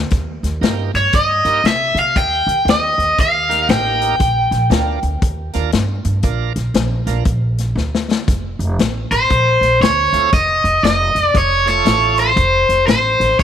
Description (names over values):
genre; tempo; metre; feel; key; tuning
electric blues shuffle; 118 BPM; 4/4; swing 63% on 8ths; Bb major; A4 = 440 Hz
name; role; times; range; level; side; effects
upright bass; bass; 0.0-13.4 s; F1 to C3; -20 LUFS; right 1 dB; none
natural country drum kit; drums; 0.1-13.4 s; hi-hat, kick drum, snare drum; -19 LUFS; left 3 dB; none
bright tonewheel organ; accompaniment; 0.6-12.3 s; A3 to Bb4; -26 LUFS; right 13 dB; slow rotary speaker, overdrive
cranked stack guitar; melody; 1.0-5.7, 9.1-13.4 s; C5 to G5; -14 LUFS; equal; overdrive
room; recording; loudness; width
light reverb; 1960s-style stereo; -13 LUFS; side -9 dB against mid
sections
0.0-13.4 A section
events
drum fill 7.8-8.3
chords
0.1 Eb; 4.2 Bb; 8.3 F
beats
| 0.12 0.63 1.14 1.65 | 2.16 2.67 3.18 3.69 | 4.20 4.71 5.22 5.73 | 6.24 6.75 7.26 7.77 | 8.28 8.79 9.30 9.81 | 10.32 10.84 11.35 11.86 | 12.37 12.88 13.39